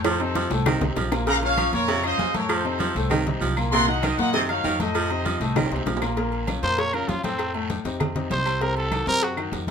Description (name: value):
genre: latin, salsa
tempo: 196 BPM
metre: 4/4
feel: straight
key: Bb harmonic minor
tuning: A4 = 440 Hz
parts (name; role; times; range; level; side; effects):
- growling baritone saxophone; second line; 0.0-6.0 s; C3 to F3; -28 LUFS; right 4 dB; none
- bright concert grand piano; accompaniment; 0.0-9.7 s; A2 to C5; -28 LUFS; left 4 dB; none
- upright bass; bass; 0.0-9.7 s; Bb1 to Gb2; -29 LUFS; right 1 dB; none
- claves; percussion; 0.0-9.5 s; none; -36 LUFS; left 6 dB; none
- congas; percussion; 0.0-9.7 s; none; -31 LUFS; equal; none
- cowbell and bongos; percussion; 0.0-9.7 s; none; -32 LUFS; left 3 dB; none
- guiro; percussion; 0.0-9.7 s; none; -40 LUFS; right 6 dB; none
- timbales and agogo bells; percussion; 0.0-9.7 s; none; -33 LUFS; right 8 dB; none
- clear trumpet section; melody; 0.1-5.8 s; A4 to C6; -25 LUFS; left 1 dB; none
- growling trumpet; melody; 6.6-9.4 s; C4 to Db5; -24 LUFS; right 1 dB; none
room: moderate studio ambience, RT60 0.5 s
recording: minimal, uncompressed stereo recording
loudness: -21 LUFS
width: side -7 dB against mid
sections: 0.0-6.2 A section; 6.2-9.7 B section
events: drum fill 0.1-1.3, 5.6-6.2; trumpet solo 6.2-9.7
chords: 0.1 F7; 1.3 Bbm; 2.5 F7; 3.7 Cm7b5; 4.9 F7; 6.2 Bbm; 7.4 F7; 8.6 Cdim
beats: | 0.05 0.36 0.66 0.97 | 1.27 1.58 1.89 2.19 | 2.50 2.81 3.11 3.42 | 3.72 4.03 4.33 4.64 | 4.95 5.25 5.56 5.87 | 6.17 6.48 6.78 7.09 | 7.39 7.70 8.01 8.31 | 8.62 8.92 9.22 9.53